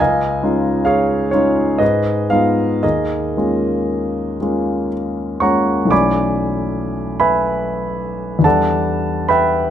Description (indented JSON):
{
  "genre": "classical, impressionist solo piano",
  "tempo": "56-72 BPM",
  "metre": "3/4",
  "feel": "rubato",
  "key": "B dorian from 5.9 s",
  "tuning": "A4 = 441 Hz",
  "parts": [
    { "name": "warm concert grand piano", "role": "solo", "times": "0.0-9.7 s", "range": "B1 to D6", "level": "-15 LUFS", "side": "equal", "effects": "none" }
  ],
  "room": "light reverb",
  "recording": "close, detailed microphones",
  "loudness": "-15 LUFS",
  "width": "side -10 dB against mid",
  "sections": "0.0-5.9 A section; 5.9-9.7 B section",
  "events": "none",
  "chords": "0.0 Dbadd9; 1.8 Abm6; 2.8 Ebm11; 5.9 Bm11; 8.4 Em7"
}